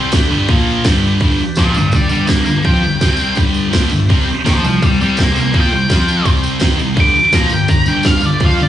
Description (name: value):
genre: garage rock duo or trio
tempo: 167 BPM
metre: 4/4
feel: straight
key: G mixolydian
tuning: A4 = 440 Hz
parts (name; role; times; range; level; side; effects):
- combo organ; sustained chords; 0.0-8.7 s; Bb3 to A5; -28 LUFS; right 1 dB; wide subtle chorus
- thick fuzz guitar; riff; 0.0-8.7 s; G2 to Bb4; -14 LUFS; equal; distortion, slapback echo
- garage drum kit; drums; 0.1-8.5 s; crash cymbal, kick drum, snare drum; -16 LUFS; equal; none
- tambourine; percussion; 0.1-8.6 s; none; -30 LUFS; right 3 dB; none
- octave-fuzz lead guitar; melody; 1.6-8.7 s; C5 to D6; -16 LUFS; equal; distortion
room: little or no reverb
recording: live gig heard through the venue's PA, club reverb, nothing above 10.6 kHz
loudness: -11 LUFS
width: side -11 dB against mid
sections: 0.0-1.2 A section; 1.2-8.7 B section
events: lead electric guitar solo 1.2-8.7; transistor combo organ fill 3.4-4.1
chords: 0.1 G; 0.5 Bb5; 0.9 G; 3.0 C5; 3.4 G; 4.1 C5; 5.9 F5; 6.3 C5; 7.0 G